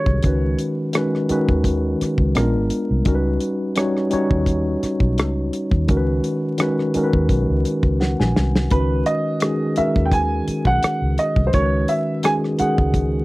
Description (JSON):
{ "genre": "R&B, neo-soul", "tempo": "85 BPM", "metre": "4/4", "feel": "swing 54% on 16ths", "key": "unclear", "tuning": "A4 = 440 Hz", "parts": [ { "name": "warm baby grand piano", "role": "melody", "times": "0.0-0.6, 8.7-13.2 s", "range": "B4 to G#5", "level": "-22 LUFS", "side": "right 1 dB", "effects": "none" }, { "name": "tine electric piano", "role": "accompaniment", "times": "0.0-13.2 s", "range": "D#3 to G#5", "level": "-21 LUFS", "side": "equal", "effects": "medium stereo tremolo" }, { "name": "vintage muted fingered electric bass", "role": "bass", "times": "0.1-13.2 s", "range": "G#1 to D#2", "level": "-21 LUFS", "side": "equal", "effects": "none" }, { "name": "damped 70s drum kit", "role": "drums", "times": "0.1-13.1 s", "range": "hi-hat, kick drum, rim click, snare drum", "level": "-21 LUFS", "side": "equal", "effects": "none" } ], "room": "little or no reverb", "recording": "dry, close 1970s-style studio recording, vinyl crackle", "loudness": "-17 LUFS", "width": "side -20 dB against mid", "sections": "0.0-13.2 A section", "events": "tine electric piano fill 7.7-8.7; drum fill 8.0-8.7", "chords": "0.2 F#sus24/C#; 2.4 A#7b9; 3.1 D#7alt/C#; 5.9 G#m11/C#; 8.7 C#9sus4; 11.5 F#sus24/C#" }